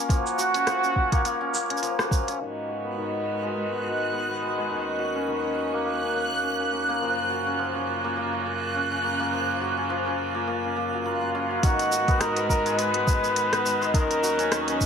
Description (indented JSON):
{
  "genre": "folktronica",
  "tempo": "104 BPM",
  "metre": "4/4",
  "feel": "swing 56% on 16ths",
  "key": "unclear",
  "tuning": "A4 = 441 Hz",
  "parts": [
    { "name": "hammered dulcimer", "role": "arpeggios", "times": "0.0-14.9 s", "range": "D#3 to F#4", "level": "-27 LUFS", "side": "left 1 dB", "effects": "low-pass filter, ping-pong delay" },
    { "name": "warm flugelhorn", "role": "melody", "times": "0.1-1.8, 11.1-14.8 s", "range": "E#4 to B4", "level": "-26 LUFS", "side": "equal", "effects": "ping-pong delay" },
    { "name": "electronic kick drum", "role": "drums", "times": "0.1-2.2, 11.6-14.9 s", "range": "none", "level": "-23 LUFS", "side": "equal", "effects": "studio ambience" },
    { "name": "organic electronic drum kit", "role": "drums", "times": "0.1-2.4, 11.6-14.9 s", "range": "hi-hat, rim click, shaker", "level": "-29 LUFS", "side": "right 1 dB", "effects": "low-pass filter on perc, studio ambience, low-pass filter on hats, low-pass filter on snare" },
    { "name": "bright string quartet", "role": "sustained chords", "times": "2.4-14.9 s", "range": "D#2 to F#4", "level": "-32 LUFS", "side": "right 2 dB", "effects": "vintage 12-bit sampler grit, low-pass filter" },
    { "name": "backwards swelling texture", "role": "texture", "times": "2.4-11.6 s", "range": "F#6", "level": "-31 LUFS", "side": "right 2 dB", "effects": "built-in reverb" }
  ],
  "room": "moderate studio reverb, RT60 0.5 s",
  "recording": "none",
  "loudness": "-23 LUFS",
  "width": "side -7 dB against mid",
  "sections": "0.0-2.4 A section; 2.4-11.6 B section; 11.6-14.9 C section",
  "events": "band accent 2.0; filter sweep on hammered dulcimer 2.4-11.6",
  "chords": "0.0 F#maj7; 2.4 G#m7; 4.7 D#m7; 7.0 F#maj7; 11.6 G#m7; 13.9 D#m7"
}